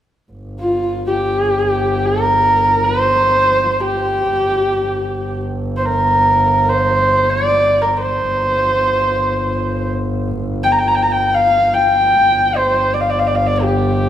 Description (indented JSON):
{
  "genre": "mongolian traditional",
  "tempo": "free time",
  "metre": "none",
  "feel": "none",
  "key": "G yu mode",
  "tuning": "A4 = 440 Hz",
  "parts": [
    { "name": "rich double bass", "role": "drone", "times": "0.3-14.1 s", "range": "G1", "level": "-21 LUFS", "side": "equal", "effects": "none" },
    { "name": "rich horsehead fiddle", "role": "melody", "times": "0.6-14.1 s", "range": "F4 to Bb5", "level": "-14 LUFS", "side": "equal", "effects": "none" }
  ],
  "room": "wet concert hall reverb, RT60 1.9 s",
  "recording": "none",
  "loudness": "-13 LUFS",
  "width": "side -10 dB against mid",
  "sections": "0.3-14.1 A section",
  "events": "none",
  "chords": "none",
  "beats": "free time"
}